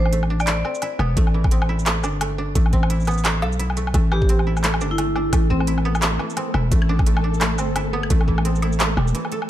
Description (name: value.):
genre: half-time drum and bass.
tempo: 173 BPM.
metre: 4/4.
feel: swing 59% on 16ths, half-time.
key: A minor.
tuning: A4 = 440 Hz.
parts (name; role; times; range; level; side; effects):
vibraphone with hard mallets; melody; 0.0-0.9, 4.1-5.7 s; C4 to D5; -28 LUFS; equal; vintage 12-bit sampler grit, dub echo.
koto; arpeggios; 0.0-9.5 s; E3 to A4; -28 LUFS; right 2 dB; vintage 12-bit sampler grit, dub echo.
growling 808-style bass; bass; 0.0-9.1 s; E1 to B1; -21 LUFS; equal; none.
organic electronic drum kit; drums; 0.1-9.5 s; handclaps, hi-hat, shaker, woodblock; -25 LUFS; equal; overdrive, studio reverb.
electronic kick drum; drums; 1.2-8.4 s; none; -19 LUFS; equal; overdrive, studio reverb.
flickering grainy texture; texture; 4.5-9.5 s; A3 to A4; -30 LUFS; equal; built-in reverb.
room: digital ambience.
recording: dark, warm production.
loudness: -18 LUFS.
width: side -12 dB against mid.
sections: 0.0-9.5 A section.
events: none.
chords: 0.0 Am.